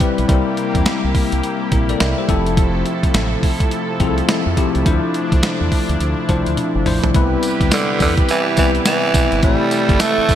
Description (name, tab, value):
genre	R&B, new jack swing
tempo	105 BPM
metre	4/4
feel	swing 62% on 16ths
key	C major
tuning	A4 = 439 Hz
part	bell-like tine electric piano	accompaniment	0.0-10.3 s	F3 to E5	-20 LUFS	left 5 dB	medium stereo tremolo
part	brassy analog pad	sustained chords	0.0-10.3 s	C3 to B4	-23 LUFS	right 2 dB	chorus
part	boom bap sampler-style drum kit	drums	0.0-10.3 s	hi-hat, kick drum, snare drum, tambourine, toms	-18 LUFS	right 1 dB	none
part	deep dub fingered electric bass	bass	0.2-10.3 s	F1 to F2	-21 LUFS	equal	none
part	growling tenor saxophone	melody	7.7-10.3 s	D3 to A3	-17 LUFS	right 3 dB	none
room	moderate lush hall reverb, RT60 2.1 s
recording	bright 1980s-style digital production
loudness	-14 LUFS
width	side -10 dB against mid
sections	0.0-7.1 A section; 7.1-10.3 B section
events	drum fill 6.6-7.1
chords	0.3 C7; 2.3 Fmaj7; 4.9 Dm9; 7.1 Cmaj7; 9.4 Am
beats	| 0.29 0.86 1.43 2.00 | 2.57 3.15 3.72 4.29 | 4.86 5.43 6.00 6.57 | 7.14 7.72 8.29 8.86 | 9.43 10.00